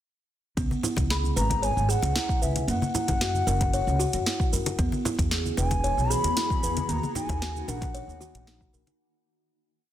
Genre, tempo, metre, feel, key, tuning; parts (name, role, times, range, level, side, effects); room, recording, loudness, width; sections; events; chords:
organic downtempo; 114 BPM; 4/4; straight; C# dorian; A4 = 440 Hz
buzzing kalimba; arpeggios; 0.6-8.9 s; A#3 to C#5; -32 LUFS; equal; digital delay
upright bass; bass; 0.6-8.8 s; E1 to F#2; -28 LUFS; equal; tube saturation, sidechain pumping
afro-pop drum kit; drums; 0.6-9.0 s; hi-hat, shaker, snare drum; -31 LUFS; right 1 dB; studio reverb
electronic kick drum; drums; 0.6-8.7 s; -29 LUFS; equal; studio reverb
congas; percussion; 0.7-9.0 s; -34 LUFS; left 2 dB
breathy mellow bass bansuri; melody; 1.1-8.7 s; E5 to B5; -30 LUFS; left 1 dB; digital delay
granular cloud pad; sustained chords; 5.5-9.0 s; D#3 to G#4; -36 LUFS; left 2 dB; built-in reverb, sidechain pumping
light reverb, small room ambience; dense, heavily limited modern master; -24 LUFS; side -12 dB against mid
0.6-9.0 groove
fade-out 6.2-9.0
0.6 C#7(no3); 2.7 F#; 4.8 E; 6.9 D#m